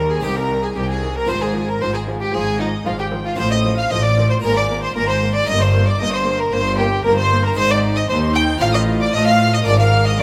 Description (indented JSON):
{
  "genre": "classical, baroque-style concerto movement with solo episodes",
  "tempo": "114 BPM",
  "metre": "4/4",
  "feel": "straight",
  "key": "unclear",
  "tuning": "A4 = 440 Hz",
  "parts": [
    { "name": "warm studio violin section", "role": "melody", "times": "0.0-10.2 s", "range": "Eb5 to G6", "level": "-28 LUFS", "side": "equal", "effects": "none" },
    { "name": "warm violin", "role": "melody", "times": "0.0-10.2 s", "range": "Eb4 to G5", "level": "-23 LUFS", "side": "equal", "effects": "none" },
    { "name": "warm chamber violin section", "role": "second line", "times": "0.0-10.2 s", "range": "Eb4 to G5", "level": "-28 LUFS", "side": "equal", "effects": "none" },
    { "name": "dark chamber viola section", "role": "accompaniment", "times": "0.0-10.2 s", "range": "Eb3 to Bb4", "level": "-28 LUFS", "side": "equal", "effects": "none" },
    { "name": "harpsichord", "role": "accompaniment", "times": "0.0-10.2 s", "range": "C2 to Bb4", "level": "-32 LUFS", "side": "equal", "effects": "none" },
    { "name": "rich studio double bass section", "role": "bass", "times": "0.0-10.2 s", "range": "G1 to A2", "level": "-24 LUFS", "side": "equal", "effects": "none" },
    { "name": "warm chamber cello section", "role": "bass", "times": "0.0-10.2 s", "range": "C2 to A3", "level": "-24 LUFS", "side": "equal", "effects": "none" }
  ],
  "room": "moderate scoring stage reverb, RT60 1.9 s",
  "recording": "none",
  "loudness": "-18 LUFS",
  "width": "mono",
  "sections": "0.0-10.2 A section",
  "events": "none",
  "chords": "0.2 Cm; 1.3 Fm/Ab; 3.4 F/A; 4.4 Bb5/Ab; 5.5 Eb/G; 7.6 Ab; 8.6 F7/A; 9.7 Bb7/Ab",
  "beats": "0.23 0.76 | 1.28 1.81 2.33 2.86 | 3.39 3.91 4.44 4.96 | 5.48 6.00 6.53 7.05 | 7.58 8.10 8.62 9.14 | 9.67 10.19"
}